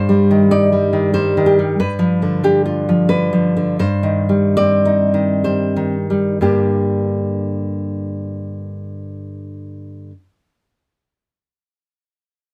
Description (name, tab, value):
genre	romantic piece for solo classical guitar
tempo	57-95 BPM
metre	3/4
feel	rubato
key	G minor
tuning	A4 = 445 Hz
part	nylon-string guitar	solo	0.0-10.1 s	G2 to D5	-17 LUFS	equal	none
room	light reverb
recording	close, detailed microphones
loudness	-16 LUFS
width	mono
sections	0.0-6.4 A section; 6.4-11.9 B section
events	slowing down 0.8-6.4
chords	0.0 Cm/G; 1.8 G7; 3.8 Cm/G; 6.4 Gm